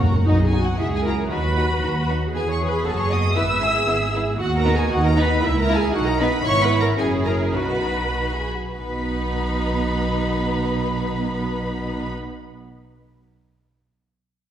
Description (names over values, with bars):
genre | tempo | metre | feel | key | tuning
quick classical-period movement for symphony orchestra | 94-120 BPM | 2/4 | straight | B major | A4 = 438 Hz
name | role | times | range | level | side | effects
warm studio violin section | melody | 0.0-12.1 s | D#5 to E6 | -26 LUFS | left 1 dB | none
warm studio violin section | second line | 0.0-12.1 s | A#3 to B4 | -28 LUFS | left 2 dB | none
dark studio viola section | accompaniment | 0.0-12.1 s | B3 to E5 | -26 LUFS | right 1 dB | none
warm studio double bass section | bass | 0.0-12.1 s | F#1 to E2 | -24 LUFS | right 2 dB | none
mellow French horn section | sustained chords | 0.2-12.1 s | D#3 to F#4 | -35 LUFS | left 1 dB | none
rich studio cello section | bass | 0.8-12.1 s | B2 to B4 | -28 LUFS | right 2 dB | none
room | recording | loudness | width
wet scoring stage reverb, RT60 1.8 s | heard from further back in the room | -19 LUFS | side -10 dB against mid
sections
0.3-8.8 A section; 8.8-11.3 B section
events
slowing down 5.9-8.8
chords
0.3 B; 0.8 F#7/C#; 1.3 B/D#; 2.3 E; 2.9 B/F#; 3.4 E/G#; 4.4 B/D#; 5.4 A#dim/C#; 5.9 B; 6.4 E/G#; 7.0 F#7; 7.5 B